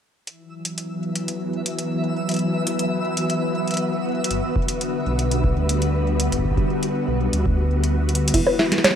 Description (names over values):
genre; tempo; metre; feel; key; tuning
IDM; 119 BPM; 4/4; straight; unclear; A4 = 440 Hz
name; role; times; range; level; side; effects
soft string machine; sustained chords; 0.6-9.0 s; D3 to B4; -23 LUFS; equal; ensemble chorus
booming analog drum machine; drums; 0.3-9.0 s; bongos, crash cymbal, hi-hat, snare drum; -22 LUFS; right 2 dB; none
twinkling granular texture; texture; 0.5-8.3 s; E5; -32 LUFS; equal; built-in reverb, sidechain pumping
dark detuned saw bass; bass; 4.3-8.4 s; E1 to D2; -22 LUFS; equal; none
electronic kick drum; drums; 4.6-8.4 s; none; -24 LUFS; equal; none
mallet-like synth pluck; arpeggios; 8.3-8.7 s; E4 to B4; -21 LUFS; left 2 dB; chorus, ping-pong delay
room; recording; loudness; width
light reverb; rough home demo mix; -20 LUFS; side -8 dB against mid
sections
0.3-8.3 A section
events
drum fill 8.1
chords
0.3 Esus2; 4.3 Gmaj7; 8.3 Esus2